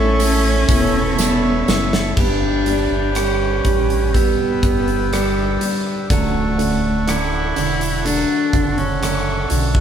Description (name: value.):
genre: pop ballad.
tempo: 61 BPM.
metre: 4/4.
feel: straight.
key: unclear.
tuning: A4 = 439 Hz.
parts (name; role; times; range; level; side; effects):
warm cello; melody; 0.0-9.5 s; G3 to E4; -22 LUFS; equal; none.
warm symphonic cello section; second line; 0.0-2.1 s; A2 to B3; -22 LUFS; left 1 dB; none.
warm grand piano; accompaniment; 0.0-9.8 s; D3 to A3; -23 LUFS; right 6 dB; none.
accordion; sustained chords; 0.0-9.8 s; A4 to E6; -25 LUFS; equal; none.
nylon-string guitar; arpeggios; 0.0-9.8 s; G2 to A4; -28 LUFS; left 4 dB; none.
sub bass with octave; bass; 0.0-9.8 s; D1 to B1; -22 LUFS; equal; none.
huge arena drum kit; drums; 0.2-9.8 s; crash cymbal, hi-hat, kick drum, rim click, snare drum; -21 LUFS; equal; none.
tambourine; percussion; 0.2-1.9 s; none; -30 LUFS; right 6 dB; none.
room: light reverb.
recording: band playing live in one room.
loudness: -15 LUFS.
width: side -8 dB against mid.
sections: 0.0-2.2 A section; 2.2-9.8 B section.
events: drum fill 1.2-2.2.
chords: 0.0 A; 2.2 G; 6.1 Dmaj7.